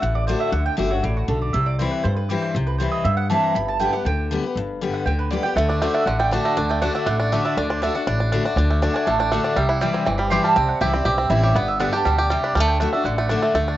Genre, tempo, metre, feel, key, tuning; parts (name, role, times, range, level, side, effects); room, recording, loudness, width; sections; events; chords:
bluegrass; 240 BPM; 4/4; straight; D mixolydian; A4 = 442 Hz
picked steel-string acoustic guitar; accompaniment; 0.0-13.8 s; G2 to G4; -24 LUFS; left 4 dB; cassette tape
mandolin; stabs; 0.0-13.3 s; F#4 to C6; -25 LUFS; right 5 dB; cassette tape
upright bass; bass; 0.0-13.8 s; G1 to G2; -23 LUFS; equal
bluegrass banjo; melody; 5.6-13.8 s; D3 to G4; -22 LUFS; right 2 dB; cassette tape
moderate spring reverb, RT60 1.4 s; home recording on cassette, nothing above 7.7 kHz; -18 LUFS; side -14 dB against mid
0.0-13.5 A section
mandolin solo 0.0-13.5
0.0 D; 1.5 C; 3.6 G; 5.6 D; 9.6 C; 11.6 G; 12.6 D